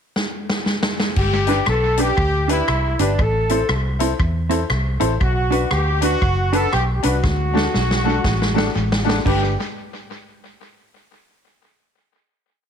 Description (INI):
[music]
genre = ska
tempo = 119 BPM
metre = 4/4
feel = swing 61% on 8ths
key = G major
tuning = A4 = 440 Hz
[part]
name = swinging big-band drum kit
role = drums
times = 0.2-9.4 s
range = crash cymbal, hi-hat, kick drum, rim click, snare drum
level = -22 LUFS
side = equal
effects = tape echo
[part]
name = clear horn section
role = melody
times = 1.2-9.5 s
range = D4 to A4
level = -22 LUFS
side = equal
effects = none
[part]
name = vintage muted fingered electric bass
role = bass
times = 1.2-9.5 s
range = F#1 to E2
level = -21 LUFS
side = equal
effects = none
[part]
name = mellow electric guitar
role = accompaniment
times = 1.5-9.4 s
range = A3 to B4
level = -26 LUFS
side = right 13 dB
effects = spring reverb
[part]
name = clear upright piano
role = stabs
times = 1.5-9.5 s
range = D4 to C5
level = -25 LUFS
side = left 12 dB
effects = none
[sound]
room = light reverb, small room ambience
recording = 1960s-style stereo with parts hard left and right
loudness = -16 LUFS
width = side -7 dB against mid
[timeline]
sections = 0.0-1.2 pickup bar; 1.2-9.3 head; 9.3-11.3 final chord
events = drum fill 0.2-1.2, 7.2-9.3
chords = 0.0 N.C.; 1.2 G; 3.2 Am; 5.2 Bm; 7.2 D; 9.3 G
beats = 0.16 0.67 | 1.17 1.67 2.18 2.68 | 3.19 3.69 4.20 4.71 | 5.21 5.72 6.22 6.73 | 7.24 7.74 8.25 8.75 | 9.26